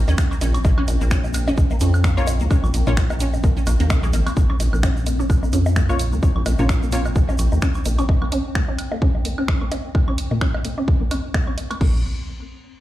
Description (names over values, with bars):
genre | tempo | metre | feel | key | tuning
minimal techno | 129 BPM | 4/4 | swing 56% on 16ths | Bb minor | A4 = 440 Hz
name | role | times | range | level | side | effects
rubbery square bass | bass | 0.0-8.0, 11.8-12.0 s | Ab1 to F2 | -19 LUFS | equal | sidechain pumping
swarming drone | texture | 0.0-11.8 s | C4 | -33 LUFS | left 1 dB | built-in reverb, sidechain pumping
resonant blip pluck | riff | 0.1-12.0 s | F3 to Db4 | -28 LUFS | equal | ensemble chorus, sidechain pumping, ping-pong delay
electronic bongos, woodblock and toms | percussion | 0.1-11.8 s | none | -30 LUFS | equal | digital delay
tube shaker | percussion | 0.1-8.1 s | none | -38 LUFS | right 3 dB | none
electronic kick drum | drums | 0.2-11.9 s | none | -18 LUFS | equal | none
house drum kit | drums | 0.2-11.9 s | crash cymbal, finger snaps, hi-hat | -30 LUFS | right 1 dB | none
filtered dub chord stab | stabs | 2.2-2.9, 5.9-7.0 s | Bb3 to Db5 | -28 LUFS | left 2 dB | chorus, cassette tape, digital delay
room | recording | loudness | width
light reverb | played on a big sound system in a bare room, large studio reverb | -17 LUFS | side -15 dB against mid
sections
0.0-4.4 A section; 4.4-11.8 B section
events
drop 0.0-4.4; filter sweep on synth arpeggio sound 4.4-11.8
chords
0.0 Bbm; 11.8 N.C.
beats
0.18 | 0.65 1.11 1.58 2.04 | 2.51 2.97 3.44 3.90 | 4.37 4.83 5.30 5.76 | 6.23 6.69 7.16 7.62 | 8.09 8.55 9.02 9.48 | 9.95 10.41 10.88 11.34 | 11.81